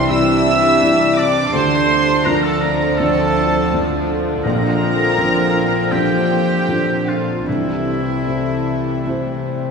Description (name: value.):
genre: cinematic.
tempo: 75-84 BPM.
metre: 4/4.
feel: rubato.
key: Bb lydian.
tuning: A4 = 441 Hz.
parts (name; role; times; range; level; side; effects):
rich studio violin section; melody; 0.0-9.7 s; E5 to E6; -24 LUFS; equal; none.
rich studio violin section; second line; 0.0-9.7 s; G3 to D4; -25 LUFS; left 1 dB; none.
felt-muted upright piano; accompaniment; 0.0-9.7 s; Bb1 to D5; -22 LUFS; left 1 dB; none.
warm studio viola section; accompaniment; 0.0-9.7 s; D3 to G3; -24 LUFS; right 2 dB; none.
mellow French horn section; sustained chords; 0.0-9.7 s; G3 to G4; -24 LUFS; left 3 dB; none.
concert harp; arpeggios; 0.0-9.7 s; Bb2 to A4; -25 LUFS; left 5 dB; none.
dark studio double bass section; bass; 0.0-9.7 s; Bb1 to D2; -27 LUFS; right 3 dB; none.
warm studio cello section; bass; 0.0-9.7 s; Bb2 to D3; -25 LUFS; right 7 dB; none.
bright clarinet; second line; 0.1-9.7 s; E4 to E5; -24 LUFS; equal; none.
clear oboe; second line; 0.1-9.7 s; E4 to E5; -23 LUFS; right 2 dB; none.
timpani; percussion; 4.4-5.5 s; Bb2; -28 LUFS; equal; none.
room: wet scoring stage reverb, RT60 1.9 s.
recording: small room reverb.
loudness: -14 LUFS.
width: side -5 dB against mid.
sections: 0.0-9.7 A section.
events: none.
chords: 0.0 Cadd9; 1.5 Dm7; 4.4 Bbadd9; 7.5 Am7/C.